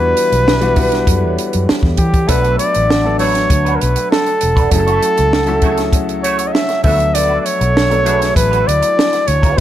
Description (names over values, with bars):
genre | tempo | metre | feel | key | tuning
lush 1970s-style soul | 99 BPM | 4/4 | straight | unclear | A4 = 440 Hz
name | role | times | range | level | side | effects
warm flugelhorn | melody | 0.0-9.6 s | G4 to E5 | -16 LUFS | equal | tape echo
warm concert grand piano | accompaniment | 0.0-9.6 s | E3 to A4 | -20 LUFS | left 3 dB | none
vintage muted fingered electric bass | bass | 0.0-9.5 s | E1 to E3 | -18 LUFS | equal | none
vibraphone with medium mallets | texture | 0.0-9.6 s | D4 to A5 | -28 LUFS | right 1 dB | none
compact cocktail drum kit | drums | 0.2-9.6 s | hi-hat, kick drum, snare drum | -16 LUFS | right 1 dB | none
electric guitar through a small old amp | riff | 2.3-9.6 s | A3 to C#5 | -25 LUFS | right 7 dB | wah, ensemble chorus
room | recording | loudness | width
light reverb, small room reverb | none | -11 LUFS | side -12 dB against mid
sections
0.0-9.6 A section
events
none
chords
0.0 Em9; 2.3 Bm7; 4.7 F#m7; 6.8 D6